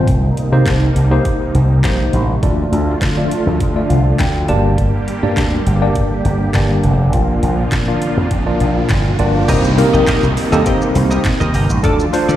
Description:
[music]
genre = dance-pop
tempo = 102 BPM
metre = 4/4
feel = straight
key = C dorian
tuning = A4 = 441 Hz
[part]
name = tine electric piano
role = accompaniment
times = 0.0-12.4 s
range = A3 to A5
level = -18 LUFS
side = left 1 dB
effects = medium stereo tremolo, sidechain pumping, slapback echo
[part]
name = filtered supersaw swell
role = sustained chords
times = 0.0-12.4 s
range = C3 to G4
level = -22 LUFS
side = right 1 dB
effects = sidechain pumping
[part]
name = slap bass with an envelope filter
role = bass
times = 0.0-12.4 s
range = F1 to D3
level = -15 LUFS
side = equal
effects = sidechain pumping
[part]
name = smooth R&B drum kit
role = drums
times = 0.1-12.4 s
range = crash cymbal, handclaps, hi-hat, kick drum, shaker, snare drum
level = -19 LUFS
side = equal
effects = none
[part]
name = riser and downlifter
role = sound effects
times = 7.0-12.4 s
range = none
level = -26 LUFS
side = equal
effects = slapback echo
[part]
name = direct-recorded clean electric guitar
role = riff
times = 9.5-12.4 s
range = F4 to Eb5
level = -23 LUFS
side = right 3 dB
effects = analog chorus, slapback echo
[sound]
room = little or no reverb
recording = live gig heard through the venue's PA, recital hall reverb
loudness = -12 LUFS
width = side -12 dB against mid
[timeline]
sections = 0.0-9.5 A section; 9.5-12.4 B section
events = tine electric piano fill 3.6-4.8; riser 7.0-9.5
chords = 0.1 Cm7; 2.4 Dm; 4.5 Gm; 7.1 Bb; 9.5 Cm7; 11.8 Dm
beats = | 0.07 0.66 1.25 1.84 | 2.43 3.02 3.60 4.19 | 4.78 5.37 5.96 6.55 | 7.13 7.72 8.31 8.90 | 9.49 10.07 10.66 11.25 | 11.84

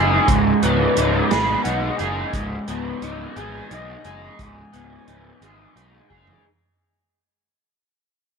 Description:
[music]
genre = psychedelic rock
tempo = 58 BPM (dotted quarters)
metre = 6/8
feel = straight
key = unclear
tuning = A4 = 439 Hz
[part]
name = concert flute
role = melody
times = 0.0-5.8 s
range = Eb5 to Cb6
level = -28 LUFS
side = right 1 dB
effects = slapback echo
[part]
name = crunchy overdriven guitar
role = riff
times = 0.0-6.4 s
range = Ab2 to Ab4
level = -21 LUFS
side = right 1 dB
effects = flanger
[part]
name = fuzz picked electric bass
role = bass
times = 0.0-6.3 s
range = Db1 to Cb2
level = -25 LUFS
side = equal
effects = overdrive
[part]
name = vintage drum kit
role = drums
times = 0.3-6.4 s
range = hi-hat, kick drum, snare drum, toms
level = -25 LUFS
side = right 2 dB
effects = none
[sound]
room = light reverb, small room ambience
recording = 1960s-style stereo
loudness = -18 LUFS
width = side -6 dB against mid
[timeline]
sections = 0.0-6.4 A section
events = fade-out 0.0-6.4; drum fill 6.1-6.4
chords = 0.0 Abm/Db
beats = | 0.28 1.31 | 2.34 3.37 | 4.39 5.42

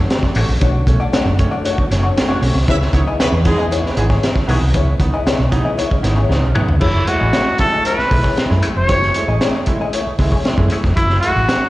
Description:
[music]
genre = funk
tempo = 116 BPM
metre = 4/4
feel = straight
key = F# dorian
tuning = A4 = 440 Hz
[part]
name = hollow-body short-scale fingered electric bass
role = bass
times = 0.0-11.5 s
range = E#1 to F#2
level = -17 LUFS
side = equal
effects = none
[part]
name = clear upright piano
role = stabs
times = 0.1-11.4 s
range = B2 to E4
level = -25 LUFS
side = right 2 dB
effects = slapback echo
[part]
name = crunchy breakbeat drum kit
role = drums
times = 0.1-11.6 s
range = crash cymbal, hi-hat, kick drum, snare drum, toms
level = -18 LUFS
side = equal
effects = none
[part]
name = vintage hollow-body jazz guitar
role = accompaniment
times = 0.2-10.9 s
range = A3 to D#5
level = -22 LUFS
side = left 4 dB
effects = wah, slapback echo
[part]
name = warm horn section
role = second line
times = 2.7-4.0 s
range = G#3 to E5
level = -23 LUFS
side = right 1 dB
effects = slapback echo
[part]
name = warm trumpet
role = melody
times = 6.8-11.7 s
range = E4 to C#5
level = -17 LUFS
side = equal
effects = slapback echo
[sound]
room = light reverb, studio ambience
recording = live gig heard through the venue's PA, recital hall reverb, nothing above 11.0 kHz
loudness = -13 LUFS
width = side -17 dB against mid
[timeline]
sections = 0.0-6.8 A section; 6.8-11.7 B section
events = drum fill 6.3-6.8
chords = 0.0 Bm9; 2.7 C#m7; 6.8 F#m9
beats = 0.10 | 0.61 1.13 1.65 2.16 | 2.68 3.19 3.71 4.23 | 4.75 5.26 5.78 6.30 | 6.82 7.33 7.85 8.37 | 8.89 9.41 9.93 10.45 | 10.97 11.49

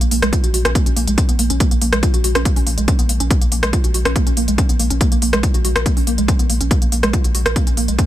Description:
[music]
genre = driving peak-time techno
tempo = 141 BPM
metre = 4/4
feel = straight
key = Bb phrygian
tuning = A4 = 440 Hz
[part]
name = woody wave-folded pluck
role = riff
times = 0.0-8.0 s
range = Ab3 to Bb4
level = -22 LUFS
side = right 1 dB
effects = wide subtle chorus, sidechain pumping, ping-pong delay
[part]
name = saturated sub bass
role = bass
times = 0.0-8.0 s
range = Bb1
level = -21 LUFS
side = equal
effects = tube saturation, sidechain pumping, low-pass filter
[part]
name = techno drum kit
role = drums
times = 0.0-8.1 s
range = hi-hat, rim click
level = -21 LUFS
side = equal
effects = overdrive, sidechain pumping on hats, small room ambience
[part]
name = electronic kick drum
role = drums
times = 0.3-8.1 s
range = none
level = -16 LUFS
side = equal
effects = overdrive, small room ambience
[sound]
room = little or no reverb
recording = none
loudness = -14 LUFS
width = side -13 dB against mid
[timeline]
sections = 0.0-8.1 A section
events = none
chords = 0.0 Bbm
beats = 0.33 0.75 1.18 | 1.60 2.03 2.45 2.88 | 3.31 3.73 4.16 4.58 | 5.01 5.43 5.86 6.28 | 6.71 7.13 7.56 7.99

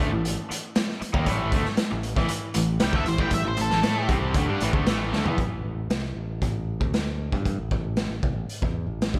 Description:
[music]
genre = classic rock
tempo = 116 BPM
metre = 4/4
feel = straight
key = A minor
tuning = A4 = 440 Hz
[part]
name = cranked stack guitar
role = riff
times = 0.0-5.4 s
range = A2 to A4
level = -33 LUFS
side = equal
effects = overdrive, slapback echo
[part]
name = raw garage guitar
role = riff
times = 0.0-5.4 s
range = A2 to A4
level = -33 LUFS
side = equal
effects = overdrive, slapback echo
[part]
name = modern bright picked electric bass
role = bass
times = 0.0-9.2 s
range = A1 to A2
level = -32 LUFS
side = equal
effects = none
[part]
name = raw garage drum kit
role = drums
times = 0.2-9.2 s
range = hi-hat, kick drum, snare drum, toms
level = -28 LUFS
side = equal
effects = none
[part]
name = octave-fuzz lead guitar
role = melody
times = 2.8-4.1 s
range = A4 to G5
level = -32 LUFS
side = equal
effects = distortion
[sound]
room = moderate lush hall reverb, RT60 1.9 s, studio ambience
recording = big arena sound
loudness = -26 LUFS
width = mono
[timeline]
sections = 0.0-5.4 A section; 5.4-9.2 B section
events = lead electric guitar solo 0.0-5.4; drum fill 5.1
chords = 0.0 Am; 6.8 N.C.; 7.3 A5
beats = 0.24 0.76 | 1.27 1.78 2.30 2.81 | 3.33 3.84 4.36 4.87 | 5.39 5.91 6.42 6.94 | 7.46 7.98 8.50 9.02

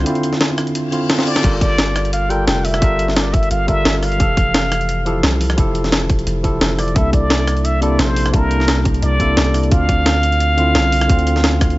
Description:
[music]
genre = liquid drum and bass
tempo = 174 BPM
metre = 4/4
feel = straight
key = G dorian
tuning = A4 = 440 Hz
[part]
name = trumpet with plunger mute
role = melody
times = 0.0-11.8 s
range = Bb4 to G5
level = -21 LUFS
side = equal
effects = tape echo
[part]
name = tine electric piano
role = accompaniment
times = 0.0-11.8 s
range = C3 to A5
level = -20 LUFS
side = equal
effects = overdrive
[part]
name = long sustained 808-style bass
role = bass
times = 0.0-11.8 s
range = F1 to D2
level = -18 LUFS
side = equal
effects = none
[part]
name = breakbeat sampler-style drum kit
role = drums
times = 0.1-11.8 s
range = crash cymbal, hi-hat, rim click, snare drum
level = -19 LUFS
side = equal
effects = small room ambience
[part]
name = reverse cymbal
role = sound effects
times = 0.8-1.4 s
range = none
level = -30 LUFS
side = left 7 dB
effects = none
[part]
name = electronic kick drum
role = drums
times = 1.4-11.7 s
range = none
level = -16 LUFS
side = equal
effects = small room ambience
[sound]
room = little or no reverb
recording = nothing above 7.7 kHz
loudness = -13 LUFS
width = side -18 dB against mid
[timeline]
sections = 0.0-11.8 A section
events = break 0.1-1.4; reverse cymbal 0.8-1.4; drum fill 1.2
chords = 0.0 Dm9; 1.4 Gm9; 4.2 Fmaj9; 7.0 C13; 9.7 Dm9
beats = | 0.06 0.41 0.75 1.09 | 1.44 1.78 2.13 2.47 | 2.82 3.16 3.51 3.85 | 4.20 4.54 4.89 5.23 | 5.58 5.92 6.27 6.61 | 6.96 7.30 7.65 7.99 | 8.34 8.68 9.03 9.37 | 9.72 10.06 10.40 10.75 | 11.10 11.44

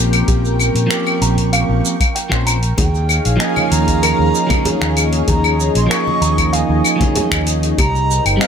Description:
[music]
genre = sunset chillout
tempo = 96 BPM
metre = 4/4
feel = straight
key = unclear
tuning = A4 = 440 Hz
[part]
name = clean electric guitar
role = accompaniment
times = 0.0-8.5 s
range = F3 to C5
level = -20 LUFS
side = moving between left 3 dB and right 7 dB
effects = auto-pan, tape echo
[part]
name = lush unison pad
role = sustained chords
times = 0.0-8.5 s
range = Eb4 to Db6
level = -23 LUFS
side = left 1 dB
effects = chorus, phaser
[part]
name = fretless electric bass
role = bass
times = 0.0-8.4 s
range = G1 to Bb2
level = -17 LUFS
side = equal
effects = tube saturation
[part]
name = deep house drum kit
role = drums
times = 0.1-8.5 s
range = claves, finger snaps, hi-hat, shaker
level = -19 LUFS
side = left 2 dB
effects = none
[part]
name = buzzing kalimba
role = arpeggios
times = 0.3-8.5 s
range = G4 to Bb5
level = -26 LUFS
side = right 2 dB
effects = tape echo
[part]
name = electronic kick drum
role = drums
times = 0.3-7.9 s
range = none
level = -19 LUFS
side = equal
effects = overdrive
[part]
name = bright reedy baroque flute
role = melody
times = 2.8-8.5 s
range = F5 to Db6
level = -22 LUFS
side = right 1 dB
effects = digital delay
[part]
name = congas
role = percussion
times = 2.8-7.9 s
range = none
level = -24 LUFS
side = left 2 dB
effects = none
[sound]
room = light reverb, digital ambience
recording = none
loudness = -13 LUFS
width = side -7 dB against mid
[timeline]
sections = 0.0-8.5 A section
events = none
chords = 0.0 Bbm69; 2.8 Eb9sus4; 7.8 Cm7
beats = | 0.28 0.91 1.53 2.16 | 2.78 3.41 4.03 4.66 | 5.28 5.91 6.53 7.16 | 7.78 8.41

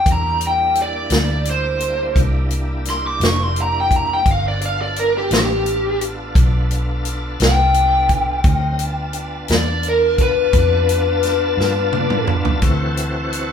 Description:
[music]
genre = slow blues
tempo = 57 BPM (dotted quarters)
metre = 12/8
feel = straight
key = G mixolydian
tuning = A4 = 440 Hz
[part]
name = lead guitar through a small cranked amp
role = melody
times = 0.0-12.3 s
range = G4 to D6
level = -18 LUFS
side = left 2 dB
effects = overdrive
[part]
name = bright tonewheel organ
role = sustained chords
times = 0.0-13.5 s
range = E3 to A5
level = -26 LUFS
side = equal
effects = slow rotary speaker, overdrive, chorus vibrato
[part]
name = vintage muted fingered electric bass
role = bass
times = 0.0-13.5 s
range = F1 to G2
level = -21 LUFS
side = equal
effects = none
[part]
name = natural country drum kit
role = drums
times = 0.1-13.5 s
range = hi-hat, kick drum, snare drum, toms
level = -19 LUFS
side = equal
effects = none
[sound]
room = moderate large studio reverb, RT60 0.9 s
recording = band playing live in one room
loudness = -15 LUFS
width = side -8 dB against mid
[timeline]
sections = 0.0-13.5 A section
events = lead electric guitar solo 0.0-13.5; drum fill 11.6-12.6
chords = 0.0 C7; 4.3 G7; 12.6 D7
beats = | 0.07 1.12 2.17 3.22 | 4.27 5.31 6.36 7.41 | 8.45 9.50 10.54 11.59 | 12.64

